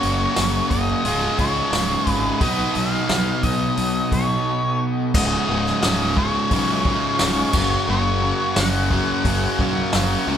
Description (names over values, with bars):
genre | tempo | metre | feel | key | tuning
classic rock | 88 BPM | 4/4 | straight | Db mixolydian | A4 = 445 Hz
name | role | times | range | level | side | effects
octave-fuzz lead guitar | melody | 0.0-9.6 s | Db5 to Gb5 | -24 LUFS | left 1 dB | distortion
bright tonewheel organ | sustained chords | 0.0-10.4 s | Ab3 to Db5 | -33 LUFS | left 1 dB | none
distorted electric guitar | riff | 0.0-10.4 s | Db2 to Cb5 | -24 LUFS | left 6 dB | overdrive
sludgy distorted guitar | riff | 0.0-10.4 s | Db2 to Cb5 | -24 LUFS | right 6 dB | overdrive
fuzz fingered electric bass | bass | 0.0-10.4 s | Db1 to Db2 | -25 LUFS | equal | overdrive
vintage drum kit | drums | 0.0-10.1 s | crash cymbal, hi-hat, kick drum, snare drum | -24 LUFS | equal | none
room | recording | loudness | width
wet stone room reverb, RT60 1.0 s | band playing live in one room | -18 LUFS | side -9 dB against mid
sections
0.0-5.1 A section; 5.1-10.4 B section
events
none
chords
0.0 Gb; 1.1 Db; 2.4 Cbadd9; 5.1 Db; 7.5 Gb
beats
0.37 1.05 1.74 | 2.42 3.10 3.78 4.46 | 5.15 5.83 6.51 7.20 | 7.88 8.56 9.25 9.93